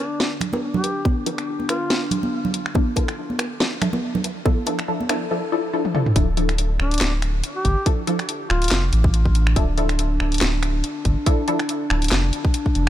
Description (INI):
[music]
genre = deep dubstep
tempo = 141 BPM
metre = 4/4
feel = swing 55% on 16ths, half-time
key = D minor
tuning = A4 = 440 Hz
[part]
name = mellow duduk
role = melody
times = 0.0-2.0, 6.8-8.8 s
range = D4 to G4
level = -30 LUFS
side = left 1 dB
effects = low-pass filter, dub echo
[part]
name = dark analog pad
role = sustained chords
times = 0.0-12.9 s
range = D4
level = -30 LUFS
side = equal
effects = lush chorus
[part]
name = garage drum kit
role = drums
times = 0.2-12.8 s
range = finger snaps, handclaps, hi-hat, snare drum, toms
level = -25 LUFS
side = equal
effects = none
[part]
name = congas and bongos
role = percussion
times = 0.4-5.2 s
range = none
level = -26 LUFS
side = right 3 dB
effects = dub echo
[part]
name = filtered dub chord stab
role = stabs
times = 1.1-11.6 s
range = F3 to A4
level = -26 LUFS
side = left 2 dB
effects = phaser, wide subtle chorus, dub echo
[part]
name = electronic kick drum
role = drums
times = 1.1-12.7 s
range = none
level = -20 LUFS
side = equal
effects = none
[part]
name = soft dub sub bass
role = bass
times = 6.2-12.9 s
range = D1 to A1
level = -20 LUFS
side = equal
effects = none
[sound]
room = digital ambience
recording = none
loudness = -19 LUFS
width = side -12 dB against mid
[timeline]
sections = 0.0-6.2 A section; 6.2-12.9 B section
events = build-up 0.0-6.2; filter sweep on synth stab 0.0-6.2; filter sweep on duduk 0.0-6.2; drum fill 5.8-6.2; drop 6.2-12.9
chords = 0.0 Dmadd9